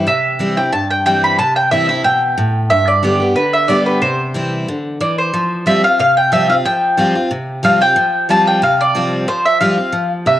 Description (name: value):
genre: bluegrass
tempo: 182 BPM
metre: 4/4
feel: straight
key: unclear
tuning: A4 = 440 Hz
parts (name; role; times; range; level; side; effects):
- picked steel-string acoustic guitar; accompaniment; 0.0-10.4 s; G2 to G4; -17 LUFS; equal; none
- mandolin; melody; 0.1-10.4 s; B4 to B5; -14 LUFS; equal; cassette tape
room: moderate spring reverb, RT60 1.9 s, small room reverb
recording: home recording on cassette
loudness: -12 LUFS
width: side -13 dB against mid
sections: 0.0-5.3 A section; 5.3-10.4 B section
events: none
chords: 0.0 C; 2.7 G; 4.0 C; 5.3 Fsus2